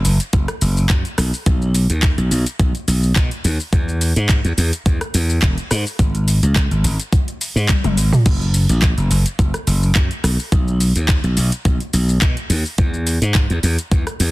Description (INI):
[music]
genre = nu-disco, nu disco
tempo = 106 BPM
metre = 4/4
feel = swing 54% on 16ths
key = unclear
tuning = A4 = 439 Hz
[part]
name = slap bass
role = bass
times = 0.0-14.3 s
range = E1 to B2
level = -17 LUFS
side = equal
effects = none
[part]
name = house drum kit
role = drums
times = 0.0-14.3 s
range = crash cymbal, handclaps, hi-hat, rim click, shaker, toms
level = -22 LUFS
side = equal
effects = none
[part]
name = electronic kick drum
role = drums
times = 0.3-14.0 s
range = none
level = -17 LUFS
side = equal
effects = overdrive
[sound]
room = little or no reverb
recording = dense, heavily limited modern master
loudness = -15 LUFS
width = side -19 dB against mid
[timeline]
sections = 0.0-14.3 A section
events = drum fill 7.7-8.3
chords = none